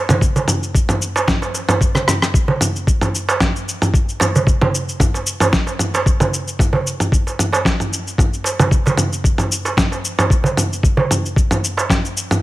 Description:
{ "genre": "downtempo", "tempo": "113 BPM", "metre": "4/4", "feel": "swing 54% on 16ths", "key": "none", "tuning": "none", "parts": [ { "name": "dusty soul sampler-style drum kit", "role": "drums", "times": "0.1-12.4 s", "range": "rim click, shaker, snare drum, toms", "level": "-18 LUFS", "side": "equal", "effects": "overdrive, small room ambience" }, { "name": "darbuka", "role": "percussion", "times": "0.1-11.9 s", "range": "none", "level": "-20 LUFS", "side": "right 3 dB", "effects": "none" }, { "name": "electronic kick drum", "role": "drums", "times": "0.2-12.0 s", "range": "none", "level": "-16 LUFS", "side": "left 1 dB", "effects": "overdrive, small room ambience" } ], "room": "little or no reverb", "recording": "none", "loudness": "-15 LUFS", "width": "side -17 dB against mid", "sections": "0.0-12.4 A section", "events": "drum fill 1.9-2.3", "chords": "none" }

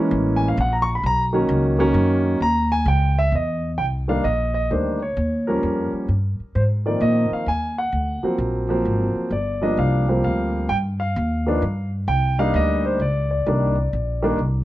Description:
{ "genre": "jazz", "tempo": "130 BPM", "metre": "3/4", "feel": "swing 66% on 8ths", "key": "C minor from 3.8 s", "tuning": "A4 = 440 Hz", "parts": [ { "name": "warm grand piano", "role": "melody", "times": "0.0-14.4 s", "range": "D#3 to C#6", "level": "-21 LUFS", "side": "equal", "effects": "none" }, { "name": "upright bass", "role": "bass", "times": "0.1-14.6 s", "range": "G1 to Bb2", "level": "-22 LUFS", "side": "equal", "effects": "none" } ], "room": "light reverb", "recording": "worn, warbling old tape, cassette tape, warbly pitch drift", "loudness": "-18 LUFS", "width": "side -15 dB against mid", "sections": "0.0-3.8 A section; 3.8-14.6 B section", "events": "grand piano solo 0.0-3.8", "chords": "0.0 F#9 (rootless); 1.0 Bmaj9; 2.4 C#m69; 3.8 Cm7; 5.2 Eb7; 6.5 Ab69; 7.9 D7alt; 9.3 Gm7; 10.7 G7(#5, no3); 12.1 Cm7" }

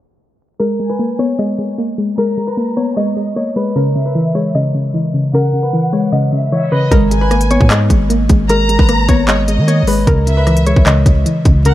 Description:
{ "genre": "hip hop, trap", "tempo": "152 BPM", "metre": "4/4", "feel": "half-time", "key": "G# minor", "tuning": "A4 = 439 Hz", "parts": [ { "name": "concert harp", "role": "melody", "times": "0.6-11.7 s", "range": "A#4 to D#5", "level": "-19 LUFS", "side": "left 2 dB", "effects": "low-pass filter, ping-pong delay" }, { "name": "soft round pluck", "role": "accompaniment", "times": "0.6-11.7 s", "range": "C#3 to B3", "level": "-15 LUFS", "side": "equal", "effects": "chorus, low-pass filter" }, { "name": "warm symphonic violin section", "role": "second line", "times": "0.8-11.7 s", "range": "C#5 to A#5", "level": "-24 LUFS", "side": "equal", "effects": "ping-pong delay" }, { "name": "long sustained 808-style bass", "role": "bass", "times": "6.9-11.7 s", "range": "G#1 to D#3", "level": "-14 LUFS", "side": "equal", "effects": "none" }, { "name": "trap drum kit", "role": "drums", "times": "6.9-11.7 s", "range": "handclaps, hi-hat, kick drum, rim click", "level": "-14 LUFS", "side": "equal", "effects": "none" } ], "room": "little or no reverb", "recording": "vinyl crackle, low-pass filter", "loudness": "-11 LUFS", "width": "side -14 dB against mid", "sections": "0.6-6.9 A section; 6.9-11.7 B section", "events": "filter sweep 0.6-6.9", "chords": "0.6 G#madd9; 3.8 C#madd9; 6.9 G#madd9; 10.1 C#madd9" }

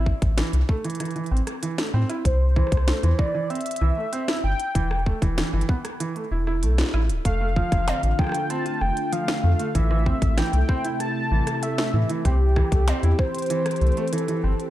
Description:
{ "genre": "IDM", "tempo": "96 BPM", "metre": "4/4", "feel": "straight", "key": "unclear", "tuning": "A4 = 440 Hz", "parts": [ { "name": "warm velvety synth lead", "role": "melody", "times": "0.0-14.7 s", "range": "G4 to A5", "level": "-28 LUFS", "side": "left 1 dB", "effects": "chorus, cassette tape, ping-pong delay" }, { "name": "felt-muted upright piano", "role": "arpeggios", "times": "0.0-14.5 s", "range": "E3 to F4", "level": "-29 LUFS", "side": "right 3 dB", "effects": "digital delay" }, { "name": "round analog bass", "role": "bass", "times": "0.0-14.5 s", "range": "D1 to A2", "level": "-21 LUFS", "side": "equal", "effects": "none" }, { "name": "electronic kick drum", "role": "drums", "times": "0.1-13.3 s", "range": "none", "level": "-24 LUFS", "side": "equal", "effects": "overdrive" }, { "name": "organic electronic drum kit", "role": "drums", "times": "0.2-14.7 s", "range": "hi-hat, rim click, snare drum", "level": "-30 LUFS", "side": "equal", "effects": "overdrive" }, { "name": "soft string machine", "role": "sustained chords", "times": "7.5-14.7 s", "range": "C3 to G4", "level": "-29 LUFS", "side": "equal", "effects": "ensemble chorus" } ], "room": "digital ambience", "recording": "dark, warm production", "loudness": "-20 LUFS", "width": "side -14 dB against mid", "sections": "0.0-14.7 A section", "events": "none", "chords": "0.0 Am; 2.3 C; 4.8 N.C.; 7.3 F6; 9.8 Am; 12.3 C" }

